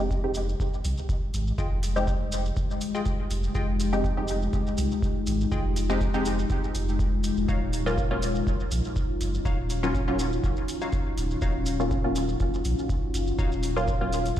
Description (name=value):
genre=dub techno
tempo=122 BPM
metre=4/4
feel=swing 54% on 16ths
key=F phrygian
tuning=A4 = 440 Hz
part: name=deep dark ambient pad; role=sustained chords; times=0.6-14.4 s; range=Ab3 to G4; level=-31 LUFS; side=left 3 dB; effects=chorus, built-in reverb, sidechain pumping
part: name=filtered dub chord stab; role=stabs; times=0.0-14.1 s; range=Gb3 to G4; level=-30 LUFS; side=equal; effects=chorus, phaser, sidechain pumping, dub echo
part: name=warm sub bass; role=bass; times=0.0-14.3 s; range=Eb1 to C2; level=-28 LUFS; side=equal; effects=sidechain pumping
part: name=electronic kick drum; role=drums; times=0.1-14.4 s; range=none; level=-28 LUFS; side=equal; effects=none
part: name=maracas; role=percussion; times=0.1-14.4 s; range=none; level=-41 LUFS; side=right 1 dB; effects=none
part: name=electronic hi-hat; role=drums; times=0.4-14.3 s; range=none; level=-41 LUFS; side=right 1 dB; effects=overdrive
part: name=wavetable chord stab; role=riff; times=1.6-13.5 s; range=Eb4 to G5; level=-38 LUFS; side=left 2 dB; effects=phaser, vintage 12-bit sampler grit, sidechain pumping, dub echo
room=light reverb, digital ambience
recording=played on a big sound system in a bare room, large studio reverb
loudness=-24 LUFS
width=side -11 dB against mid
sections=0.0-14.4 A section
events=none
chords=0.0 Fm9; 7.5 Ebm9